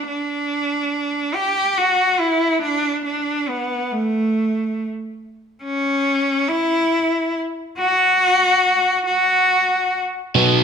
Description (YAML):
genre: rock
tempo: 47 BPM (dotted quarters)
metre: 6/8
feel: straight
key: unclear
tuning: A4 = 440 Hz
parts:
  - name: clear cello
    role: melody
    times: 0.0-10.0 s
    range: A3 to G4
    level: -17 LUFS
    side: equal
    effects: none
  - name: crunchy overdriven guitar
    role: riff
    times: 10.3-10.6 s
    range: B2 to B3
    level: -12 LUFS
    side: right 1 dB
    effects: phaser
room: wet large studio reverb, RT60 1.4 s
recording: band playing live in one room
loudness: -17 LUFS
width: side -7 dB against mid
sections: 0.1-10.3 A section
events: none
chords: none